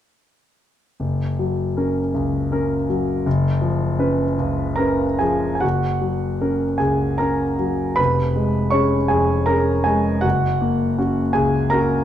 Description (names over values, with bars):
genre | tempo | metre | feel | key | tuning
classical, romantic character piece for solo piano | 78 BPM | 3/4 | uneven beats, rubato | F# major | A4 = 440 Hz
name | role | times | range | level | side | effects
warm concert grand piano | solo | 1.0-12.0 s | E#1 to C#6 | -17 LUFS | equal | none
room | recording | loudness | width
moderate large studio reverb, RT60 1.4 s | none | -18 LUFS | side -10 dB against mid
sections
1.0-5.6 A section; 5.6-12.0 B section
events
none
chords
1.0 F#; 3.3 C#7/F#; 5.6 F#; 8.0 C#7/E#; 10.2 F#